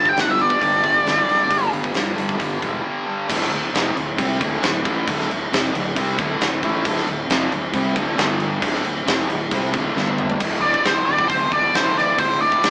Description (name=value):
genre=blues rock power trio and southern rock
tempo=135 BPM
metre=4/4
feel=straight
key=unclear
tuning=A4 = 443 Hz
part: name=octave-fuzz lead guitar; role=melody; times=0.0-1.7, 10.6-12.7 s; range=C5 to G5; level=-16 LUFS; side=equal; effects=wah, distortion
part: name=thick fuzz guitar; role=riff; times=0.0-12.7 s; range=D2 to C4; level=-23 LUFS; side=equal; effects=distortion
part: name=fuzz fingered electric bass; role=bass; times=0.0-12.7 s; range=D1 to C2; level=-26 LUFS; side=equal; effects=overdrive
part: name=huge arena drum kit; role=drums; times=0.1-12.7 s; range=crash cymbal, hi-hat, kick drum, snare drum, toms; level=-22 LUFS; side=equal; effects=none
room=moderate studio reverb, RT60 0.8 s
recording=band playing live in one room, small speaker sound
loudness=-17 LUFS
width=side -29 dB against mid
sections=0.0-3.3 A section; 3.3-10.4 B section; 10.4-12.7 C section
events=drum fill 10.0-10.4; lead electric guitar solo 10.4-12.7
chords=0.0 G5; 3.3 D5; 8.2 G5; 8.6 D5; 10.0 G5; 10.4 D5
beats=0.17 0.61 1.06 | 1.51 1.95 2.40 2.85 | 3.29 3.74 4.18 4.63 | 5.07 5.52 5.96 6.40 | 6.85 7.29 7.74 8.18 | 8.62 9.07 9.51 9.96 | 10.40 10.85 11.29 11.74 | 12.19 12.63